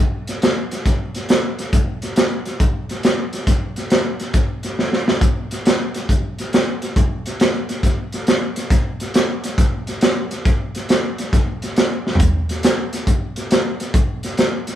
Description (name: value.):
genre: blues.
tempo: 138 BPM.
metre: 4/4.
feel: swing 67% on 8ths.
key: none.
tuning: none.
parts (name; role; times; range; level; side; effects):
crunchy breakbeat drum kit; drums; 0.3-14.7 s; hi-hat, kick drum, snare drum, toms; -16 LUFS; equal; none.
room: light reverb.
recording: band playing live in one room.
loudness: -17 LUFS.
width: side -11 dB against mid.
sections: 0.0-14.8 A section.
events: drum fill 4.8-5.2, 12.0.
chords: none.